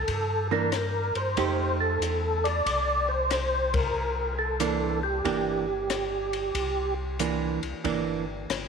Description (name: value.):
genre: soul jazz organ trio.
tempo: 93 BPM.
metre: 4/4.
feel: swing 67% on 8ths.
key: C mixolydian.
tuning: A4 = 440 Hz.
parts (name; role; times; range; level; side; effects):
percussive tonewheel organ; melody; 0.0-6.9 s; G4 to D5; -27 LUFS; equal; slow rotary speaker, chorus vibrato.
tonewheel organ; bass; 0.0-8.7 s; G1 to G2; -32 LUFS; left 1 dB; overdrive, slow rotary speaker.
compact cocktail drum kit; drums; 0.1-8.7 s; hi-hat, kick drum, ride cymbal, rim click; -34 LUFS; left 5 dB; none.
hollow-body jazz guitar; accompaniment; 0.5-8.2 s; E3 to G4; -30 LUFS; right 8 dB; none.
room: moderate echo chamber reverb, RT60 2.4 s.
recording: 1960s-style stereo.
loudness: -25 LUFS.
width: side -6 dB against mid.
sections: 0.0-8.7 A section.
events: band accent 3.6-4.0.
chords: 0.0 C9; 1.4 F9; 4.0 C9.